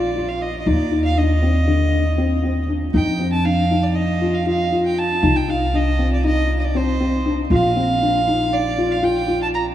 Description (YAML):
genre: contemporary instrumental, chamber music in an uneven meter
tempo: 237 BPM (eighths)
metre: 9/8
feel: straight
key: unclear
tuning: A4 = 440 Hz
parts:
  - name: rich fiddle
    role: melody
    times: 0.0-9.7 s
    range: C5 to Bb5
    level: -23 LUFS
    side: right 3 dB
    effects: none
  - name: felt-muted upright piano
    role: arpeggios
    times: 0.0-9.6 s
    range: D3 to F4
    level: -20 LUFS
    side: left 2 dB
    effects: none
  - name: upright bass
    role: bass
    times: 0.0-9.7 s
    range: Bb1 to F2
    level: -20 LUFS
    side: equal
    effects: none
room: wet huge ambient reverb, RT60 8.2 s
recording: in a vast, echoing space, small room ambience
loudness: -16 LUFS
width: side -12 dB against mid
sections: 0.0-9.7 A section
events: none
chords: 0.0 Bb; 0.7 Cmadd9/Eb; 2.9 F5; 5.2 Cm; 7.5 Bb5